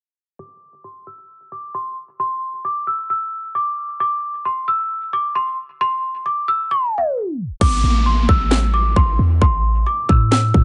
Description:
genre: hip hop, trap.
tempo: 133 BPM.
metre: 4/4.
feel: half-time.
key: unclear.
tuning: A4 = 440 Hz.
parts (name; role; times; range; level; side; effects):
worn celesta; melody; 0.4-10.6 s; C6 to E6; -23 LUFS; equal; low-pass filter, digital delay.
clean 808-style bass; bass; 7.6-10.6 s; A1 to A2; -19 LUFS; equal; none.
trap drum kit; drums; 7.6-10.6 s; crash cymbal, handclaps, kick drum, snare drum; -18 LUFS; equal; none.
downlifter; sound effects; 7.6-10.6 s; none; -30 LUFS; equal; none.
room: little or no reverb.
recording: tape stop, nothing above 10.7 kHz.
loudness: -19 LUFS.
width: mono.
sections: 0.4-7.6 A section; 7.6-10.6 B section.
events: filter sweep on celesta 0.4-7.6; tape stop 6.7-7.6; hi-hats muted 7.6-10.6.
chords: 0.4 N.C.; 7.6 Am.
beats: | 0.39 0.84 1.29 1.75 | 2.20 2.65 3.10 3.55 | 4.00 4.45 4.90 5.36 | 5.81 6.26 6.71 7.16 | 7.61 8.06 8.51 8.96 | 9.42 9.87 10.32.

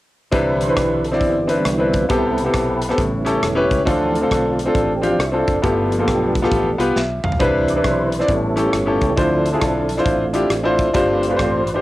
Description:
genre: uptempo gospel.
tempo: 136 BPM.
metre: 4/4.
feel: swing 63% on 8ths.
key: C major.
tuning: A4 = 442 Hz.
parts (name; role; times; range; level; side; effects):
clear grand piano; accompaniment; 0.3-11.8 s; G2 to F5; -17 LUFS; left 1 dB; cassette tape.
percussive tonewheel organ; sustained chords; 0.3-11.8 s; C3 to D5; -23 LUFS; right 2 dB; fast rotary speaker, chorus vibrato, cassette tape.
fingered electric bass; bass; 0.3-11.8 s; E1 to D2; -26 LUFS; equal; none.
modern studio drum kit; drums; 0.3-11.7 s; hi-hat, kick drum, rim click, snare drum, toms; -25 LUFS; equal; cassette tape.
room: light reverb, studio reverb.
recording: home recording on cassette.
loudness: -16 LUFS.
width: side -16 dB against mid.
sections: 0.3-11.8 A section.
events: tonewheel organ solo 0.3-11.8; drum fill 7.0-7.4.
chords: 0.3 Cmaj9; 2.1 Am9/C; 3.0 A7; 3.9 Dm7; 5.6 G9; 7.4 Cmaj9; 8.3 A7; 9.2 Dm9; 10.9 G7sus4.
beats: | 0.33 0.77 1.21 1.66 | 2.10 2.54 2.98 3.43 | 3.87 4.31 4.75 5.20 | 5.64 6.08 6.52 6.96 | 7.40 7.85 8.29 8.73 | 9.17 9.62 10.06 10.50 | 10.95 11.39.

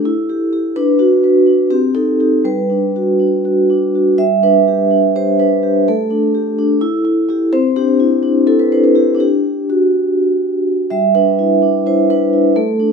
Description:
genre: classical, contemporary piece for solo vibraphone.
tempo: 250 BPM (eighths).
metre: 7/8.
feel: rubato.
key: G major.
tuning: A4 = 440 Hz.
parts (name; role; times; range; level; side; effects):
vibraphone with soft mallets; solo; 0.0-12.9 s; G3 to E5; -12 LUFS; equal; none.
room: moderate recital hall reverb, RT60 1.4 s.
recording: close, detailed microphones.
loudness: -12 LUFS.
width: side -5 dB against mid.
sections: 0.0-4.2 A section; 4.2-12.9 A section.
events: none.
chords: 0.1 Emadd11; 0.8 D6; 1.7 Cm6; 2.4 Gmaj7; 4.2 G; 5.9 A7sus4; 6.8 Emadd11; 7.5 Cadd9; 9.2 N.C.; 10.9 G6.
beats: 0.06 0.29 0.53 | 0.76 0.99 1.23 1.47 1.71 1.95 2.20 | 2.45 2.70 2.95 3.20 3.45 3.69 3.94 | 4.19 4.43 4.67 4.91 5.15 5.39 5.64 | 5.88 6.11 6.35 6.59 6.82 7.06 7.29 | 7.53 7.76 8.00 8.23 8.47 8.71 8.95 | 9.20 9.45 9.69 9.94 10.18 10.43 10.67 | 10.91 11.15 11.39 11.63 11.87 12.10 12.33 | 12.57 12.80.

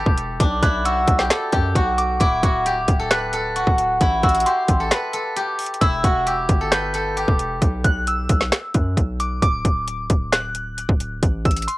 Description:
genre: hip hop, trap.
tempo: 133 BPM.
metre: 4/4.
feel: half-time.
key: unclear.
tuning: A4 = 440 Hz.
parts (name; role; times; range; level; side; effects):
steel-string zither; melody; 0.0-9.5 s; D4 to B4; -21 LUFS; equal; cassette tape, plate reverb, tape echo.
glassy synth bell; second line; 0.0-11.8 s; C6 to G6; -26 LUFS; equal; chorus, tremolo, cassette tape, tape echo.
hard-hitting 808-style bass; bass; 0.0-11.7 s; D1 to F#2; -26 LUFS; equal; none.
trap drum kit; drums; 0.1-11.8 s; finger snaps, hi-hat, kick drum, snare drum; -19 LUFS; equal; overdrive, cassette tape.
room: light reverb.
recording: home recording on cassette.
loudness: -17 LUFS.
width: side -18 dB against mid.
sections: 0.0-11.8 A section.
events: break 4.9-5.8.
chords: 0.4 B5; 2.2 D; 4.0 Am7; 5.8 Em; 7.6 B5; 9.4 D; 11.2 A5.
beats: | 0.40 0.85 1.30 1.75 | 2.21 2.66 3.11 3.56 | 4.01 4.46 4.91 5.36 | 5.81 6.26 6.72 7.17 | 7.62 8.07 8.52 8.97 | 9.42 9.87 10.32 10.78 | 11.23 11.68.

